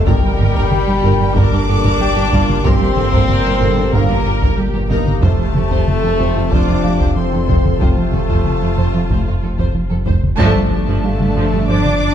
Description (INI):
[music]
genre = cinematic, hybrid orchestral and electronic film score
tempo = 93 BPM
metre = 4/4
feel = straight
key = G minor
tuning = A4 = 440 Hz
[part]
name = warm symphonic violin section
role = second line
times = 0.0-12.1 s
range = A4 to D6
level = -27 LUFS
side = left 3 dB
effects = none
[part]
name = rich studio viola section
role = accompaniment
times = 0.0-12.1 s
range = D3 to Bb4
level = -25 LUFS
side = equal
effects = none
[part]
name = airy breathy pad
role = sustained chords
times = 0.0-12.1 s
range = Bb2 to D5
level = -25 LUFS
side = equal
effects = chorus
[part]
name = mellow trombone section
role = sustained chords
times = 0.0-11.9 s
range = Bb2 to D4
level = -28 LUFS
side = right 3 dB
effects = none
[part]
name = warm French horn section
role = sustained chords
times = 0.0-12.1 s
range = G3 to D4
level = -21 LUFS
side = left 3 dB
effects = none
[part]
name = saturated sub bass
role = bass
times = 0.0-12.1 s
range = F1 to G1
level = -22 LUFS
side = equal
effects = none
[part]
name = dark concert grand piano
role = texture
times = 0.0-12.1 s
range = G4 to G5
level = -33 LUFS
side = left 3 dB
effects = none
[part]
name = warm symphonic violin section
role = melody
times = 0.1-12.1 s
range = D4 to D6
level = -28 LUFS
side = left 4 dB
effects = none
[part]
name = rubbery square bass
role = riff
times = 0.1-12.1 s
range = F2 to G3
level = -21 LUFS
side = right 2 dB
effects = none
[part]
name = rich symphonic cello section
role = bass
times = 0.1-12.1 s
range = F2 to D4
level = -21 LUFS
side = right 3 dB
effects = none
[part]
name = rich symphonic double bass section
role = bass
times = 0.1-11.7 s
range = F1 to G2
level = -21 LUFS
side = right 3 dB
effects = none
[part]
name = taiko ensemble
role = drums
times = 0.1-12.1 s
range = none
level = -20 LUFS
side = left 1 dB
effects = none
[sound]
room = moderate scoring stage reverb, RT60 1.8 s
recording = dark, warm production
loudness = -12 LUFS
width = side -9 dB against mid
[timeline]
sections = 0.0-10.4 A section; 10.4-12.1 B section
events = band accent 10.4-11.0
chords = 0.1 Gm; 5.2 F; 10.4 Dm/G